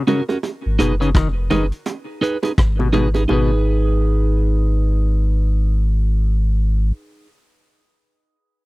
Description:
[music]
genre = roots reggae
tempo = 84 BPM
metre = 4/4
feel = swing 59% on 16ths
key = G# dorian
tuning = A4 = 440 Hz
[part]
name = auto-wah clav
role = arpeggios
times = 0.0-3.5 s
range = B2 to D#3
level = -21 LUFS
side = left 4 dB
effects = overdrive
[part]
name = clean electric guitar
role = accompaniment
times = 0.1-7.3 s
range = C#4 to B4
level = -22 LUFS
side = right 2 dB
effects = dub echo
[part]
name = vintage drum kit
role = drums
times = 0.1-3.3 s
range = hi-hat, kick drum, rim click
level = -18 LUFS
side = equal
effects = none
[part]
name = bongos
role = percussion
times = 0.1-3.6 s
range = none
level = -24 LUFS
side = right 5 dB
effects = none
[part]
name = warm sub bass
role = bass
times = 0.7-6.9 s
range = E#1 to G#1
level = -17 LUFS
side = equal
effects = none
[sound]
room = little or no reverb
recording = dry, close 1970s-style studio recording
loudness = -16 LUFS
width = side -21 dB against mid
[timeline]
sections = 0.0-3.3 A section; 3.3-6.2 B section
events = none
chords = 0.4 G#m

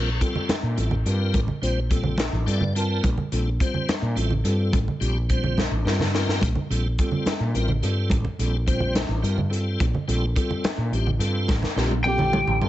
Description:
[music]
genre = electric jazz fusion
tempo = 71 BPM (dotted quarters)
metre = 6/8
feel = straight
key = unclear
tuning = A4 = 439 Hz
[part]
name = tonewheel organ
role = accompaniment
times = 0.0-12.7 s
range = G3 to A5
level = -29 LUFS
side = left 1 dB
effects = slow rotary speaker, chorus vibrato
[part]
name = woody fretless electric bass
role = bass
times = 0.0-12.7 s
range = A1 to Bb2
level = -24 LUFS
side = equal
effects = none
[part]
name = crisp fusion drum kit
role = drums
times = 0.2-12.7 s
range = hi-hat, kick drum, snare drum, toms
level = -26 LUFS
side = equal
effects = none
[part]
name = congas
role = percussion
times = 0.4-12.7 s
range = none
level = -28 LUFS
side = right 2 dB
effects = none
[part]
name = lightly driven lead guitar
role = melody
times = 12.0-12.6 s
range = G5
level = -23 LUFS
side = right 1 dB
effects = none
[part]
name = breathy tenor saxophone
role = second line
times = 12.1-12.6 s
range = G4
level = -27 LUFS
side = left 3 dB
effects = none
[sound]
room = little or no reverb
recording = nothing above 8.0 kHz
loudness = -21 LUFS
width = side -14 dB against mid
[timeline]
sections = 0.0-12.7 A section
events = tonewheel organ fill 2.2-3.0; drum fill 5.6-6.4, 11.5-12.7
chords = 0.0 Bb5

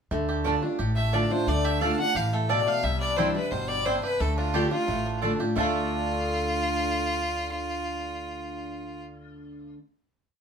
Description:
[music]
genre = bluegrass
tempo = 176 BPM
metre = 4/4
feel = straight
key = D minor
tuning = A4 = 440 Hz
[part]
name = picked steel-string acoustic guitar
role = accompaniment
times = 0.1-9.8 s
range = A2 to F4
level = -30 LUFS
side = left 1 dB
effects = none
[part]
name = bluegrass banjo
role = arpeggios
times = 0.1-9.8 s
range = G3 to A4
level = -33 LUFS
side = right 4 dB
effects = none
[part]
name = upright bass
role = bass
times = 0.1-9.7 s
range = G1 to D2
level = -31 LUFS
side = equal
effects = none
[part]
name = mandolin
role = stabs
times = 0.4-9.8 s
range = A3 to A5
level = -30 LUFS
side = right 5 dB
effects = none
[part]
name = clear fiddle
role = melody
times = 1.0-9.0 s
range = F4 to F#5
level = -29 LUFS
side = equal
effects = none
[part]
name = lap resonator guitar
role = second line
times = 1.0-9.7 s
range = F4 to F#5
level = -33 LUFS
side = left 7 dB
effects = none
[sound]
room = wet studio ambience, RT60 0.4 s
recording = band playing live in one room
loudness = -24 LUFS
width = side -6 dB against mid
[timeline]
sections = 0.1-5.6 A section; 5.6-8.3 final chord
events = none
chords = 0.1 Dm; 2.8 Cadd9; 4.2 Dm

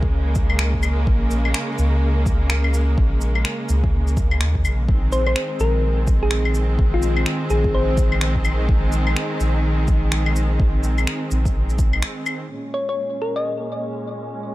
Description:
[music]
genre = future garage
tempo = 126 BPM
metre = 4/4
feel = swing 60% on 16ths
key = Bb minor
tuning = A4 = 440 Hz
[part]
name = rich symphonic string section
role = sustained chords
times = 0.0-14.5 s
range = Bb2 to Db4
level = -25 LUFS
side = right 1 dB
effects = sidechain pumping, low-pass filter
[part]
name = soft dub sub bass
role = bass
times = 0.0-12.0 s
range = Bb1 to Eb2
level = -20 LUFS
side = equal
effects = sidechain pumping
[part]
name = electronic kick drum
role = drums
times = 0.0-11.9 s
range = none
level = -20 LUFS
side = equal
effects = small room ambience
[part]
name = electronic shaker, claves and finger snaps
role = drums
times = 0.4-12.4 s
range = none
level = -26 LUFS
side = left 2 dB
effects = low-pass filter on perc, small room ambience, low-pass filter on snare
[part]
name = thumb-piano-like synth pluck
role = melody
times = 5.1-8.2, 12.7-13.6 s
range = F4 to Eb5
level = -25 LUFS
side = left 2 dB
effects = chorus, digital delay
[sound]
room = digital ambience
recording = dark, warm production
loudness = -18 LUFS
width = side -17 dB against mid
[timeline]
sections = 0.0-12.5 A section; 12.5-14.5 B section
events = break 12.0-12.5; filter sweep on string section 12.5-14.5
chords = 0.0 Bbm7; 4.9 Ab/Bb; 12.5 Bbm7

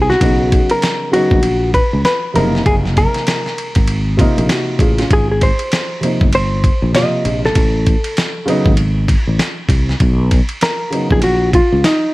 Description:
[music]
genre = hip hop, jazz-hop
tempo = 98 BPM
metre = 4/4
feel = swing 61% on 16ths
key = unclear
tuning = A4 = 441 Hz
[part]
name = hollow-body jazz guitar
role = melody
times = 0.0-12.1 s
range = D#4 to Eb5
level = -17 LUFS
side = equal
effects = none
[part]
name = sustaining fretless electric bass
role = bass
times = 0.0-11.8 s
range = Gb1 to C#2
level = -16 LUFS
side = equal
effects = lush chorus
[part]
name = dusty soul sampler-style drum kit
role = drums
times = 0.1-12.0 s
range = hi-hat, kick drum, ride cymbal, snare drum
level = -16 LUFS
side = equal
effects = none
[part]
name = dark baby grand piano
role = accompaniment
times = 0.2-11.2 s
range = Cb3 to Ab4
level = -19 LUFS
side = equal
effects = none
[sound]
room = little or no reverb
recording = vinyl crackle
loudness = -12 LUFS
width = side -19 dB against mid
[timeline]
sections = 0.0-12.1 A section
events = none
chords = 0.2 Bmaj9; 2.4 Gbmaj9; 5.1 Abmaj9; 7.6 Amaj9; 10.0 Bmaj9

